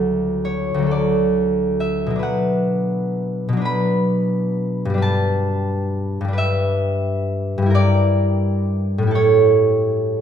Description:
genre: classical, solo harp piece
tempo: 39-47 BPM (dotted quarters)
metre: 6/8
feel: rubato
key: unclear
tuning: A4 = 437 Hz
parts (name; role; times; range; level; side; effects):
- concert harp; solo; 0.0-10.2 s; D2 to B5; -17 LUFS; equal; none
room: wet recital hall reverb, RT60 1.6 s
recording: minimal, uncompressed stereo recording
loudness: -17 LUFS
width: side -8 dB against mid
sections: 0.0-10.2 A section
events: none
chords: 0.0 D; 2.2 Bm; 5.0 Em7/G; 7.7 Em7b5/G; 9.1 A7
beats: 0.92 | 2.24 3.65 | 5.02 6.38 | 7.74 9.15

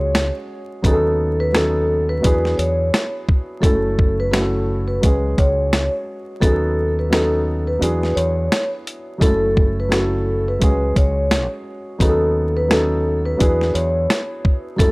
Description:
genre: hip hop, boom-bap hip-hop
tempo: 86 BPM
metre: 4/4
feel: swing 60% on 16ths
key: unclear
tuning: A4 = 440 Hz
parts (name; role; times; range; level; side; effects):
- vibraphone with soft mallets; melody; 0.0-14.9 s; A4 to C#5; -22 LUFS; equal; none
- dark grand piano; accompaniment; 0.0-14.9 s; F#3 to A4; -23 LUFS; equal; cassette tape
- deep dub fingered electric bass; bass; 0.0-14.9 s; F#1 to F#2; -21 LUFS; equal; none
- boom bap sampler-style drum kit; drums; 0.1-14.9 s; hi-hat, kick drum, rim click, snare drum; -17 LUFS; equal; none
room: small room ambience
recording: dry, gritty hardware recording, vinyl crackle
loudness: -16 LUFS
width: side -27 dB against mid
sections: 0.0-14.9 A section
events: break 7.8-9.2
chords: 0.0 C#sus4; 0.8 B7/D#; 2.2 E7; 3.6 F#m7; 5.0 C#sus4; 6.4 B7/D#; 7.8 E7; 9.2 F#m7; 10.6 C#sus4; 12.0 B7/D#; 13.4 E7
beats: 0.14 | 0.84 1.54 2.23 2.93 | 3.63 4.33 5.03 5.72 | 6.42 7.12 7.82 8.51 | 9.21 9.91 10.61 11.30 | 12.00 12.70 13.40 14.10 | 14.79

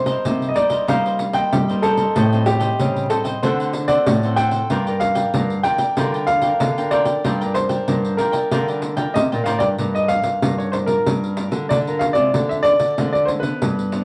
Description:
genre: samba and choro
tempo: 94 BPM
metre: 4/4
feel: straight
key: G minor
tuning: A4 = 440 Hz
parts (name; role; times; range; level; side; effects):
- warm concert grand piano; melody; 0.0-14.0 s; G4 to G5; -22 LUFS; equal; none
- nylon-string guitar; accompaniment; 0.0-14.0 s; G2 to Bb4; -31 LUFS; equal; none
- nylon-string guitar; bass; 0.0-14.0 s; G2 to G3; -26 LUFS; equal; none
- cavaquinho; accompaniment; 0.1-9.8 s; D4 to G5; -30 LUFS; equal; none
- pandeiro; percussion; 0.1-14.0 s; none; -26 LUFS; equal; none
room: wet small room reverb, RT60 0.5 s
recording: vinyl crackle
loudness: -19 LUFS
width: mono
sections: 0.0-9.8 A section; 9.8-14.0 B section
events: none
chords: 0.0 Cm7; 2.2 Am7b5; 3.4 D7; 4.7 Gm7; 12.3 Dm7b5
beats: 0.25 0.88 1.52 | 2.15 2.79 3.43 4.06 | 4.70 5.33 5.97 6.61 | 7.24 7.88 8.52 9.15 | 9.79 10.43 11.06 11.70 | 12.34 12.98 13.62

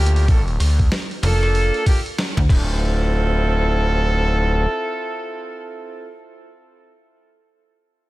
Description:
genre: glitch hop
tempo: 95 BPM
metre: 4/4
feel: swing 61% on 16ths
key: D minor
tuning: A4 = 440 Hz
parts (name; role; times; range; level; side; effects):
- warm horn section; stabs; 0.0-6.1 s; Bb3 to A4; -23 LUFS; right 1 dB; sidechain pumping, tape echo
- gritty driven synth bass; bass; 0.0-4.7 s; D1 to D2; -18 LUFS; equal; none
- boom bap sampler-style drum kit; drums; 0.1-2.7 s; crash cymbal, hi-hat, rim click, snare drum; -28 LUFS; equal; none
- electronic kick drum; drums; 0.3-2.6 s; none; -16 LUFS; equal; none
- slap-like FM bass; bass; 1.2-2.5 s; F1 to D2; -18 LUFS; equal; none
room: little or no reverb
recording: none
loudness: -16 LUFS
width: side -18 dB against mid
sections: 0.0-2.8 A section; 2.8-5.3 B section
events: drop 0.0-2.8; band accent 2.2-2.5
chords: 0.0 Gm9; 2.5 Dm9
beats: | 0.28 0.92 1.55 2.18 | 2.81 3.44 4.07 4.70

